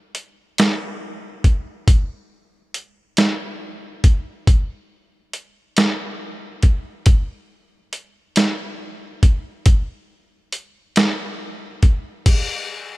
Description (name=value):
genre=blues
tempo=46 BPM (dotted quarters)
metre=12/8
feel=straight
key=none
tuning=none
part: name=boom bap sampler-style drum kit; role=drums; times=0.1-12.5 s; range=crash cymbal, hi-hat, kick drum, snare drum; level=-16 LUFS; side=equal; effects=none
room=little or no reverb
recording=none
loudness=-17 LUFS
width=side -20 dB against mid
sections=0.0-12.3 A section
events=none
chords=none